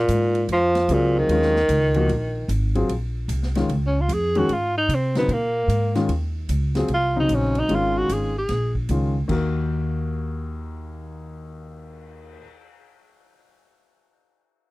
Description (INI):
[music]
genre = modal jazz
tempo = 150 BPM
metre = 4/4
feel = swing 65% on 8ths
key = Eb dorian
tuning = A4 = 441 Hz
[part]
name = warm tenor saxophone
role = melody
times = 0.0-8.7 s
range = Bb2 to Ab4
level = -21 LUFS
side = equal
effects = none
[part]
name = upright bass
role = bass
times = 0.0-12.4 s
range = Ab1 to C3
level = -24 LUFS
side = equal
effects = none
[part]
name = swinging big-band drum kit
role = drums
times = 0.1-12.4 s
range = crash cymbal, cymbal swell, hi-hat, kick drum, ride cymbal, snare drum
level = -36 LUFS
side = equal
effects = none
[part]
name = warm concert grand piano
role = accompaniment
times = 0.9-12.4 s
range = Eb2 to Bb4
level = -25 LUFS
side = left 2 dB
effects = none
[sound]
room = little or no reverb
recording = dry, close 1970s-style studio recording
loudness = -19 LUFS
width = side -20 dB against mid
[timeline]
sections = 0.0-2.9 A section; 2.9-9.3 B section; 9.3-12.5 C section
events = tenor saxophone solo 2.9-9.3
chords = 0.0 Eb9sus4; 9.3 Ebm